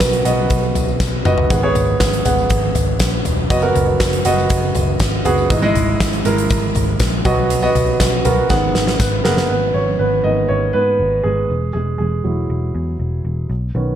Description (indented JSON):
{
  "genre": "piano-driven pop",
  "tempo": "120 BPM",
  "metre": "4/4",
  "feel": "straight",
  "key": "G# minor",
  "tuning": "A4 = 440 Hz",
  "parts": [
    { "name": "warm grand piano", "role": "accompaniment", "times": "0.0-14.0 s", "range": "G#2 to F#5", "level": "-18 LUFS", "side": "right 2 dB", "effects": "none" },
    { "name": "vintage muted picked electric bass", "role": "bass", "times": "0.0-14.0 s", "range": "E1 to G#2", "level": "-20 LUFS", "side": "left 1 dB", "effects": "none" },
    { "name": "huge arena drum kit", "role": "drums", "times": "0.0-9.5 s", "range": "hi-hat, kick drum, snare drum, toms", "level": "-18 LUFS", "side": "left 1 dB", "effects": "none" },
    { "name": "tambourine", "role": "percussion", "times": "0.0-9.4 s", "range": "none", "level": "-34 LUFS", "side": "left 15 dB", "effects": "none" }
  ],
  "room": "wet large studio reverb, RT60 0.8 s, studio reverb",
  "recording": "dark, warm production",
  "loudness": "-14 LUFS",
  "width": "side -10 dB against mid",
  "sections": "0.0-9.5 A section; 9.5-14.0 B section",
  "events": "drum fill 1.0-1.5, 8.5-9.5; grand piano solo 9.5-14.0",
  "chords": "0.0 B; 1.5 G#m7; 3.5 B/F#; 5.5 Emaj7/G#; 7.2 B; 8.5 G#m7; 9.5 G#madd9; 11.5 Eadd9"
}